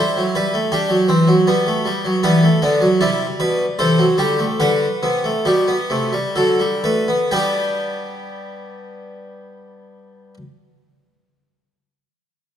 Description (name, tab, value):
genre	classical, baroque-style 4-part fugue for harpsichord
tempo	61-80 BPM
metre	3/4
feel	straight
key	G major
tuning	A4 = 439 Hz
part	harpsichord	solo	0.0-10.4 s	B2 to G5	-16 LUFS	equal	none
room	moderate scoring stage reverb, RT60 1.8 s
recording	none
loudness	-15 LUFS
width	side -9 dB against mid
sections	0.0-7.3 A section; 7.3-10.2 B section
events	slowing down 1.1-7.3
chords	0.0 C; 1.5 G; 2.2 Em; 3.8 C; 4.6 G; 6.4 D; 7.3 G